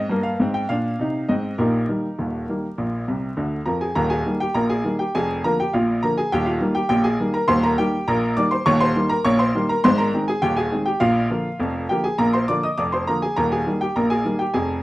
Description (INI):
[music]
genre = ragtime piano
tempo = 102 BPM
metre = 2/4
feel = straight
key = Eb major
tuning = A4 = 440 Hz
[part]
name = clear upright piano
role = solo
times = 0.0-14.8 s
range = Eb1 to Eb6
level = -19 LUFS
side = equal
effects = none
[sound]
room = moderate club reverb, RT60 0.5 s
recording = dark, warm production, vinyl crackle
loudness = -19 LUFS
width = side -18 dB against mid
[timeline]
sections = 0.0-4.0 A section; 4.0-14.8 B section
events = upright piano fill 3.1-4.0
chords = 0.4 Ab; 1.6 Eb/Bb; 2.8 Bb; 4.0 Eb; 5.1 Bb7/F; 6.3 Eb; 8.7 Eb7; 9.8 Ab; 11.0 Bb; 13.4 Eb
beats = | 0.40 0.99 | 1.58 2.18 | 2.77 3.37 | 3.96 4.55 | 5.14 5.73 | 6.32 6.91 | 7.49 8.08 | 8.67 9.25 | 9.84 10.42 | 11.01 11.60 | 12.19 12.78 | 13.37 13.96 | 14.55